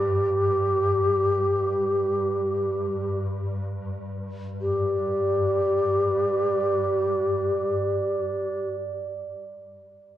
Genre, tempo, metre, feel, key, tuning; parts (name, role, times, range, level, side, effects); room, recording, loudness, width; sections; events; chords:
world meditative, free-time meditation music; free time; A4 = 440 Hz
mellow low Native American-style wooden flute; melody; 0.0-8.7 s; G4; -23 LUFS; equal; ping-pong delay
swarming drone; drone; 0.0-8.7 s; G2; -31 LUFS; left 1 dB; built-in reverb
glass harmonica; texture; 4.6-8.7 s; D5; -30 LUFS; right 4 dB
moderate scoring stage reverb, RT60 2.1 s; worn, warbling old tape, cassette tape, warbly pitch drift; -22 LUFS; side -12 dB against mid
0.0-4.6 A section; 4.6-8.4 B section